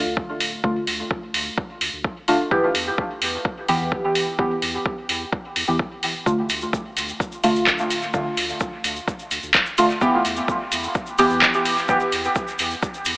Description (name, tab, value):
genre	dub techno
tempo	128 BPM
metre	4/4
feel	straight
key	D dorian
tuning	A4 = 443 Hz
part	deep mellow chord stab	stabs	0.0-12.0 s	D3 to G4	-22 LUFS	equal	chorus, phaser, sidechain pumping, dub echo
part	warm sub bass	bass	0.1-13.1 s	D1 to E2	-37 LUFS	equal	sidechain pumping
part	electronic kick drum	drums	0.2-12.9 s	none	-26 LUFS	equal	overdrive
part	soft vintage rhythm box	drums	0.4-13.2 s	handclaps, hi-hat	-23 LUFS	equal	overdrive, dub echo
part	egg shaker	percussion	6.3-13.2 s	none	-34 LUFS	equal	none
room	moderate huge ambient reverb, RT60 6.8 s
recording	AM radio sound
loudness	-19 LUFS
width	side -23 dB against mid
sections	0.0-13.2 A section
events	none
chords	0.0 Dm; 2.5 Em; 6.3 Dm; 10.0 Em